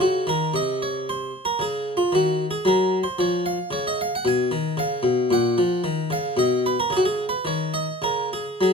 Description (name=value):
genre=classical, baroque-style suite movement for harpsichord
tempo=113 BPM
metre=3/4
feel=rubato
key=F# major from 3.7 s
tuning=A4 = 443 Hz
part: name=harpsichord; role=solo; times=0.0-8.7 s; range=A#2 to G#5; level=-20 LUFS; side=equal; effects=none
room=light reverb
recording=close, detailed microphones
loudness=-20 LUFS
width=side -5 dB against mid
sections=0.0-8.7 A section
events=none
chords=0.0 Ebm7/Db; 0.5 N.C.; 2.1 Ebm; 3.2 N.C.; 3.7 C#7; 5.3 F#/A#; 6.4 N.C.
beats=0.00 | 0.54 1.08 1.61 | 2.13 2.66 3.19 | 3.72 4.25 4.77 | 5.30 5.84 6.38 | 6.91 7.45 8.01 | 8.60